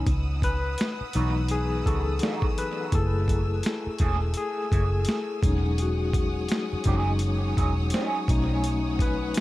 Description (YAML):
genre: R&B, neo-soul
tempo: 84 BPM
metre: 4/4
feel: swing 59% on 16ths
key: C# minor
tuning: A4 = 440 Hz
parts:
  - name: barky tine electric piano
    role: accompaniment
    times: 0.0-9.4 s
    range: E3 to B4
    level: -29 LUFS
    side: left 3 dB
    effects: overdrive, fast tremolo, dub echo
  - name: bright studio string section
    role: sustained chords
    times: 0.0-9.4 s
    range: A3 to E6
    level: -38 LUFS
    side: equal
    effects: none
  - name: vintage muted fingered electric bass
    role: bass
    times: 0.0-9.3 s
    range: E1 to C#2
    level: -26 LUFS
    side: equal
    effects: none
  - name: boom bap sampler-style drum kit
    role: drums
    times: 0.1-9.4 s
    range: hi-hat, kick drum, snare drum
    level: -27 LUFS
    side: equal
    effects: none
  - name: electric guitar through a small old amp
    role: second line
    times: 0.8-9.4 s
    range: E3 to G#4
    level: -35 LUFS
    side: right 4 dB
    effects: wah, dub echo
room: little or no reverb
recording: echo-heavy mix, vinyl crackle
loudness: -23 LUFS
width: side -17 dB against mid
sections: 0.1-9.4 A section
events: tine electric piano solo 0.1-9.4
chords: 0.1 C#m11; 2.9 F#m9; 5.4 Emaj13; 8.3 B13